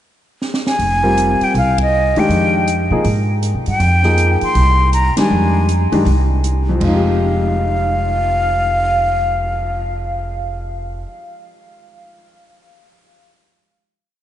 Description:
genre	modal jazz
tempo	160 BPM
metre	4/4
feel	swing 63% on 8ths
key	F dorian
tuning	A4 = 439 Hz
part	open jazz drum kit	drums	0.4-9.7 s	crash cymbal, cymbal swell, hi-hat, kick drum, ride cymbal, snare drum	-27 LUFS	right 2 dB	none
part	breathy concert flute	melody	0.7-10.6 s	Eb5 to C6	-18 LUFS	left 1 dB	none
part	upright bass	bass	0.8-11.0 s	F1 to C3	-17 LUFS	equal	none
part	clear grand piano	accompaniment	1.0-11.2 s	F2 to Bb4	-20 LUFS	left 1 dB	none
room	wet cathedral reverb, RT60 5.8 s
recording	in a vast, echoing space, nothing above 10.5 kHz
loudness	-13 LUFS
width	side -11 dB against mid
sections	0.0-0.8 pickup bar; 0.8-6.8 A section; 6.8-9.8 final chord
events	drum fill 0.4-0.8; band accent 1.7, 5.1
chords	0.0 N.C.; 0.8 Fm9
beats	0.04 0.42 | 0.79 1.17 1.55 1.92 | 2.30 2.67 3.05 3.43 | 3.80 4.18 4.55 4.93 | 5.30 5.68 6.05 6.43 | 6.81 7.18 7.56 7.93 | 8.31 8.69 9.06 9.44

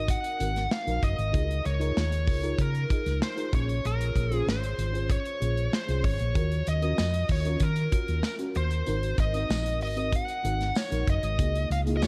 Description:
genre	polished 1980s jazz-funk pop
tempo	96 BPM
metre	4/4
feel	straight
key	Eb dorian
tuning	A4 = 440 Hz
part	bluesy overdriven lead guitar	melody	0.0-12.1 s	Bb4 to Gb5	-34 LUFS	equal	distortion
part	FM electric piano with soft pad layer	accompaniment	0.0-12.1 s	Bb3 to Db5	-37 LUFS	equal	lush chorus
part	hollow-body short-scale fingered electric bass	bass	0.0-12.1 s	Gb1 to Eb3	-31 LUFS	equal	none
part	modern studio drum kit	drums	0.1-12.1 s	hi-hat, kick drum, snare drum	-32 LUFS	equal	none
part	tambourine	percussion	7.0-12.1 s	none	-48 LUFS	equal	none
room	small room ambience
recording	dark, warm production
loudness	-28 LUFS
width	mono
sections	0.0-12.1 A section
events	none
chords	0.0 Ab7; 1.3 Db69; 3.5 Bbm9; 6.4 Ebm9; 8.9 Ab7; 11.4 Db69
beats	0.09 0.71 | 1.34 1.97 2.59 3.22 | 3.85 4.47 5.10 5.73 | 6.36 6.98 7.61 8.24 | 8.87 9.50 10.13 10.76 | 11.39 12.02

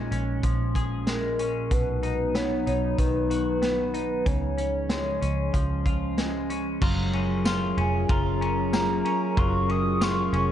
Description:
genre	dream pop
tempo	94 BPM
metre	4/4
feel	straight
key	unclear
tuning	A4 = 439 Hz
part	warbly tape-like pad	sustained chords	0.0-10.5 s	Bb2 to Bb4	-29 LUFS	equal	chorus, built-in reverb
part	semi-hollow electric guitar	arpeggios	0.0-10.5 s	Bb2 to Ab4	-32 LUFS	left 4 dB	lush chorus, digital delay
part	vintage muted fingered electric bass	bass	0.0-10.5 s	F1 to Db2	-30 LUFS	equal	none
part	vintage drum kit	drums	0.1-10.5 s	crash cymbal, hi-hat, kick drum, ride cymbal, snare drum, tambourine	-28 LUFS	equal	none
part	hollow clarinet-like synth lead	melody	1.1-10.5 s	Bb4 to Eb6	-29 LUFS	equal	chorus, digital delay
room	light reverb, small room ambience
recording	dark, warm production, nothing above 10.9 kHz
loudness	-23 LUFS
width	side -10 dB against mid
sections	0.0-6.8 A section; 6.8-10.5 B section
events	none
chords	0.0 Bbm7; 1.7 B; 4.3 Db; 6.8 Gbmaj7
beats	0.43 1.07 | 1.71 2.35 2.99 3.63 | 4.26 4.90 5.54 6.18 | 6.82 7.46 8.09 8.73 | 9.37 10.01

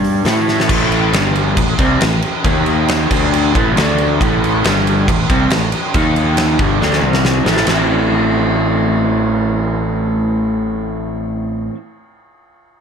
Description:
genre	blues rock power trio and southern rock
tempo	138 BPM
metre	4/4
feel	straight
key	A minor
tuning	A4 = 441 Hz
part	crunchy overdriven guitar	riff	0.0-11.8 s	G2 to A4	-16 LUFS	right 1 dB	none
part	overdriven fingered electric bass	bass	0.0-11.7 s	G1 to A2	-19 LUFS	left 1 dB	none
part	huge arena drum kit	drums	0.0-7.8 s	crash cymbal, hi-hat, kick drum, ride cymbal, snare drum	-17 LUFS	equal	none
room	light reverb, studio ambience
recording	none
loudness	-12 LUFS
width	side -7 dB against mid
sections	0.7-7.7 A section; 7.7-11.2 B section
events	drum fill 0.5, 6.8-7.7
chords	0.3 A5; 1.1 G5; 1.6 Am; 2.5 D#5; 3.1 D5; 3.6 A5; 3.8 D5; 4.2 A5; 4.6 G5; 5.1 Am; 6.0 D#5; 6.6 Gsus2; 7.0 C5; 7.5 A5; 7.7 Am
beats	0.27 | 0.70 1.15 1.58 2.02 | 2.46 2.90 3.33 3.77 | 4.21 4.64 5.08 5.52 | 5.95 6.39 6.82 7.26 | 7.69 8.13 8.56 8.99 | 9.43 9.86 10.30 10.73

